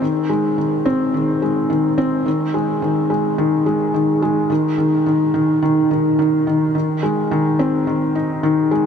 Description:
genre	electronica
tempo	107 BPM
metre	4/4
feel	straight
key	unclear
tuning	A4 = 440 Hz
part	felt-muted upright piano	solo	0.0-8.9 s	Eb3 to Eb4	-15 LUFS	equal	none
room	wet huge ambient reverb, RT60 7.9 s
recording	none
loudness	-15 LUFS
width	side -7 dB against mid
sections	0.0-6.7 A section; 6.7-8.9 B section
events	build-up 0.0-6.7; drop 6.7-8.9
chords	none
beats	| 0.02 0.58 1.14 1.70 | 2.26 2.82 3.38 3.94 | 4.50 5.06 5.62 6.19 | 6.75 7.31 7.87 8.43

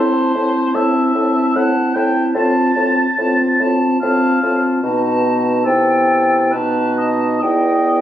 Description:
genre	classical, slow romantic movement for wind quintet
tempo	66-76 BPM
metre	3/4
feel	rubato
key	unclear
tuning	A4 = 440 Hz
part	silver concert flute	melody	0.0-8.0 s	G5 to A5	-20 LUFS	left 1 dB	none
part	warm oboe	second line	0.0-8.0 s	A4 to A5	-20 LUFS	equal	none
part	clear clarinet	accompaniment	0.0-8.0 s	D#4 to F4	-21 LUFS	right 2 dB	none
part	mellow French horn	accompaniment	0.0-8.0 s	B3 to C4	-19 LUFS	left 2 dB	none
part	warm bassoon	bass	0.0-8.0 s	E2 to C3	-20 LUFS	right 1 dB	none
room	light reverb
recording	recorded on a phone in the room, club reverb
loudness	-13 LUFS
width	side -11 dB against mid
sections	0.0-8.0 A section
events	none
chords	0.0 Am; 2.3 F/A; 4.8 B7; 5.7 Cmaj7; 6.5 B7; 7.4 Em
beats	0.75 1.55 | 2.35 3.17 4.00 | 4.82 5.66 6.52 | 7.42

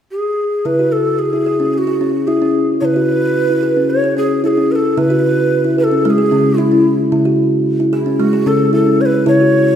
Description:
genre	world meditative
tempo	111 BPM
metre	4/4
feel	straight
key	C# minor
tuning	A4 = 440 Hz
part	breathy hollow low Native American-style wooden flute	melody	0.1-9.8 s	E4 to C#5	-16 LUFS	left 1 dB	ping-pong delay
part	kalimba	arpeggios	0.7-9.8 s	C#3 to G#4	-13 LUFS	equal	none
room	wet recital hall reverb, RT60 1.4 s, small room reverb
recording	none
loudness	-12 LUFS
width	side -9 dB against mid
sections	0.7-5.0 A section; 5.0-9.8 B section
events	none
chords	0.0 N.C.; 0.7 C#m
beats	0.11 | 0.65 1.19 1.74 2.27 | 2.81 3.35 3.89 4.43 | 4.97 5.51 6.05 6.59 | 7.12 7.66 8.20 8.74 | 9.27

